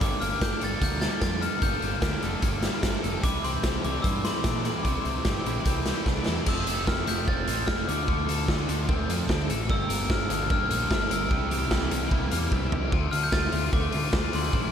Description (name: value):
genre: indie rock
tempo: 149 BPM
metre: 4/4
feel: straight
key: D minor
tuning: A4 = 440 Hz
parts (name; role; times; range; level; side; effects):
- glockenspiel with hard plastic mallets; melody; 0.0-14.7 s; C6 to A6; -32 LUFS; left 2 dB; ping-pong delay
- fuzz guitar; riff; 0.0-12.9 s; G2 to G4; -34 LUFS; right 7 dB; distortion, wide subtle chorus, ping-pong delay
- overdriven electric guitar; riff; 0.0-14.7 s; G2 to Bb4; -34 LUFS; left 6 dB; analog chorus
- growling picked electric bass; bass; 0.0-14.7 s; F1 to Bb2; -31 LUFS; equal; overdrive
- raw garage drum kit; drums; 0.0-14.6 s; crash cymbal, hi-hat, kick drum, snare drum, toms; -27 LUFS; equal; none
room: moderate lush hall reverb, RT60 1.9 s, studio reverb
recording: dreamy mix soaked in reverb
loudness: -24 LUFS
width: side -8 dB against mid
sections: 0.0-6.5 A section; 6.5-12.9 B section; 12.9-14.7 C section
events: drum fill 6.1-6.5, 12.5-12.9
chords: 0.0 Gmadd9; 3.2 Cadd9; 6.5 Fmaj7; 7.9 Dm7; 9.7 Gm7; 11.3 C7; 12.9 Dm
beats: | 0.01 0.42 0.82 1.22 | 1.63 2.03 2.43 2.84 | 3.24 3.64 4.05 4.45 | 4.85 5.26 5.66 6.06 | 6.47 6.87 7.28 7.68 | 8.08 8.49 8.89 9.29 | 9.70 10.10 10.51 10.91 | 11.31 11.71 12.12 12.52 | 12.92 13.33 13.73 14.13 | 14.53